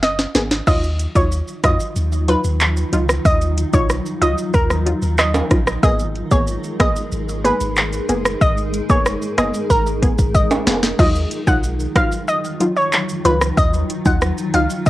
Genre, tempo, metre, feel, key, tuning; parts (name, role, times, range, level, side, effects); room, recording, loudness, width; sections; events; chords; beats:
dancehall; 93 BPM; 4/4; straight; Eb minor; A4 = 440 Hz
analog pluck; melody; 0.0-14.9 s; Bb4 to Gb5; -21 LUFS; equal; chorus, cassette tape
punchy sub bass; bass; 0.0-14.7 s; F1 to F2; -22 LUFS; equal
afro-pop drum kit; drums; 0.0-14.9 s; crash cymbal, handclaps, hi-hat, kick drum, rim click, shaker, snare drum; -18 LUFS; equal; cassette tape
punchy chord stab; accompaniment; 0.3-14.8 s; Gb3 to Ab4; -22 LUFS; left 1 dB; chorus
granular cloud pad; sustained chords; 1.1-14.9 s; Eb3 to Bb4; -26 LUFS; equal; built-in reverb, sidechain pumping
maracas and timbales; percussion; 0.7-14.9 s; -27 LUFS; right 3 dB
digital ambience; home recording on cassette; -15 LUFS; side -16 dB against mid
0.7-11.0 A section; 11.0-14.9 B section
drum fill 0.0-0.7, 9.7-11.0
0.0 Abmadd9; 0.7 Ebmadd9; 5.8 Abmadd9; 11.0 Ebmadd9
0.03 | 0.67 1.32 1.96 2.61 | 3.25 3.90 4.54 5.19 | 5.83 6.48 7.12 7.77 | 8.41 9.06 9.70 10.35 | 10.99 11.64 12.28 12.93 | 13.57 14.22 14.86